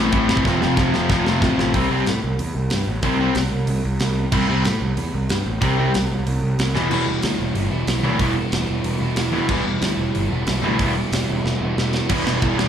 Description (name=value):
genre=punk rock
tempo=186 BPM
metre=4/4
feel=straight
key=unclear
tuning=A4 = 440 Hz
part: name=biting overdriven guitar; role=riff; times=0.0-1.7, 6.9-12.7 s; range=A2 to F4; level=-25 LUFS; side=right 2 dB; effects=slapback echo
part: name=cranked stack guitar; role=riff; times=0.0-12.7 s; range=E2 to C4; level=-23 LUFS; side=left 10 dB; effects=overdrive, slapback echo
part: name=overdriven electric guitar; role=riff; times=0.0-12.7 s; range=E2 to C4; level=-24 LUFS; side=right 9 dB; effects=slapback echo
part: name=fuzz picked electric bass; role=bass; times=0.0-12.7 s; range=E1 to A2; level=-22 LUFS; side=equal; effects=overdrive
part: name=tight metal drum kit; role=drums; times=0.1-12.7 s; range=crash cymbal, hi-hat, kick drum, ride cymbal, snare drum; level=-24 LUFS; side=equal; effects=none
room=light reverb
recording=live gig heard through the venue's PA, club reverb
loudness=-18 LUFS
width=side -9 dB against mid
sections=0.0-1.7 A section; 1.7-12.1 B section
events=drum fill 0.5-1.7, 6.7, 11.4-12.1; half time 1.7-12.1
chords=0.5 F; 1.7 C5; 6.7 Em